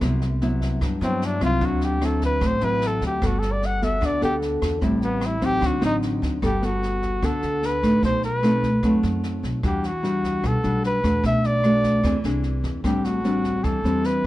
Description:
bossa nova; 150 BPM; 4/4; straight; G major; A4 = 437 Hz
nylon-string guitar; accompaniment; 0.0-14.3 s; G2 to A4; -23 LUFS; equal
upright bass; bass; 0.0-14.3 s; G1 to G2; -27 LUFS; equal
jazz brush drum kit; drums; 0.0-14.3 s; kick drum, rim click, snare drum; -31 LUFS; equal
clear flugelhorn; melody; 1.0-14.3 s; B3 to F#5; -25 LUFS; equal
little or no reverb; -20 LUFS; side -16 dB against mid
0.0-6.4 A section; 6.4-14.3 B section
flugelhorn solo 0.0-6.4
0.0 Cmaj7#11; 1.6 D9; 3.2 Gmaj9; 4.8 Am7; 5.6 D7b9; 6.4 Gmaj9; 8.0 B7b9; 9.6 Em9; 11.2 Bm7; 12.0 Eaug7; 12.8 Am11
| 0.01 0.41 0.81 1.21 | 1.61 2.02 2.42 2.82 | 3.22 3.62 4.02 4.42 | 4.82 5.22 5.62 6.02 | 6.42 6.82 7.22 7.62 | 8.03 8.43 8.83 9.23 | 9.63 10.03 10.43 10.83 | 11.23 11.64 12.04 12.44 | 12.84 13.24 13.64 14.04

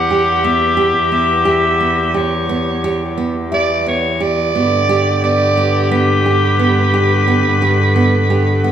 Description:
contemporary instrumental, chamber music in an uneven meter; 176 BPM (eighths); 9/8; straight; E dorian; A4 = 442 Hz
raspy soprano saxophone; melody; 0.0-8.7 s; B4 to F#5; -18 LUFS; right 3 dB
breathy clarinet; second line; 0.0-8.7 s; G4; -18 LUFS; left 4 dB
pedal harmonium; sustained chords; 0.0-8.7 s; D3 to A4; -22 LUFS; left 2 dB
rich cello; bass; 0.0-8.7 s; E2 to G2; -19 LUFS; right 2 dB
celesta; texture; 0.0-8.7 s; E5 to F#5; -26 LUFS; left 7 dB
nylon-string guitar; arpeggios; 0.1-8.7 s; B3 to B4; -19 LUFS; right 3 dB
wet recital hall reverb, RT60 1.4 s; minimal, uncompressed stereo recording; -12 LUFS; side -9 dB against mid
0.0-8.7 A section
0.0 Em; 4.5 G
0.10 0.45 0.79 1.13 | 1.47 1.81 2.15 2.50 2.84 3.18 3.52 3.86 4.21 | 4.55 4.89 5.23 5.57 5.91 6.26 6.60 6.94 7.28 | 7.62 7.96 8.31 8.65

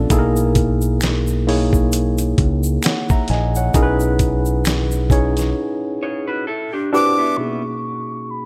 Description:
R&B, neo-soul; 66 BPM; 4/4; swing 58% on 16ths; A4 = 439 Hz
tine electric piano; accompaniment; 0.0-8.5 s; B2 to A#5; -22 LUFS; equal; low-pass filter
deep dub fingered electric bass; bass; 0.0-5.5 s; A#1 to C#2; -22 LUFS; equal
dusty soul sampler-style drum kit; drums; 0.1-5.5 s; hi-hat, kick drum, snare drum; -21 LUFS; equal
tube shaker and finger snaps; percussion; 0.1-5.6 s; -33 LUFS; equal
electric guitar through a small old amp; second line; 6.0-7.6 s; B3 to C#5; -27 LUFS; equal
breathy jazz flute; melody; 6.9-8.5 s; B5 to D6; -23 LUFS; equal; low-pass filter
light reverb, small room ambience; -18 LUFS; mono
0.0-7.4 A section; 7.4-8.5 B section
break 5.6-7.4; filter sweep 7.4-8.5
0.1 C#m13; 3.7 Emaj13/B; 6.5 Gmaj13; 7.4 Bmaj7
| 0.10 1.01 1.92 2.83 | 3.74 4.65 5.56 6.46 | 7.37 8.28

